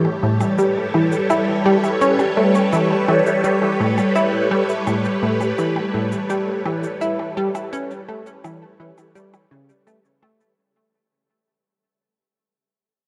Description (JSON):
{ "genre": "ambient, sequencer-driven space music", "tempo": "84 BPM", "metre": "4/4", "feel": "straight", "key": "unclear", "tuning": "A4 = 440 Hz", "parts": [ { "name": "phased string machine", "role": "sustained chords", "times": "0.0-10.6 s", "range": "G3 to C#5", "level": "-22 LUFS", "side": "equal", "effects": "ensemble chorus, phaser, shimmer reverb" }, { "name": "plucky analog bass", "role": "riff", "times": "0.0-10.4 s", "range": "A2 to E4", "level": "-22 LUFS", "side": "equal", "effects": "analog chorus, tape echo" }, { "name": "percussion blips and shaker", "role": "percussion", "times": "0.0-10.5 s", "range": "none", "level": "-34 LUFS", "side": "equal", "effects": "tape echo" } ], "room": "wet huge ambient reverb, RT60 8.6 s", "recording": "none", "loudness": "-19 LUFS", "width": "mono", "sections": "0.0-10.6 A section", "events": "fade-out 3.0-10.6", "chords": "0.0 Aadd9" }